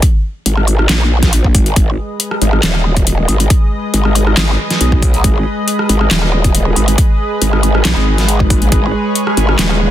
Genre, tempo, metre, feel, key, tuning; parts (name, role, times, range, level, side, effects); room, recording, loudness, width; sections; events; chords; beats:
heavy wobble dubstep; 138 BPM; 4/4; half-time; G# minor; A4 = 439 Hz
dubstep drum kit; drums; 0.0-9.8 s; handclaps, hi-hat, rim click, snare drum; -16 LUFS; left 1 dB; overdrive
electronic kick drum; drums; 0.0-8.8 s; -12 LUFS; equal; overdrive
growl bass; bass; 0.5-9.9 s; D#1 to B1; -13 LUFS; equal; chorus, overdrive
lush unison pad; sustained chords; 1.8-9.9 s; G#3 to D#5; -18 LUFS; equal; chorus, sidechain pumping
little or no reverb; dense, heavily limited modern master; -10 LUFS; side -12 dB against mid
0.0-9.9 A section
0.0 G#m
| 0.03 0.46 0.89 1.33 | 1.76 2.20 2.63 3.07 | 3.50 3.94 4.37 4.81 | 5.24 5.68 6.11 6.55 | 6.98 7.42 7.85 8.29 | 8.72 9.15 9.59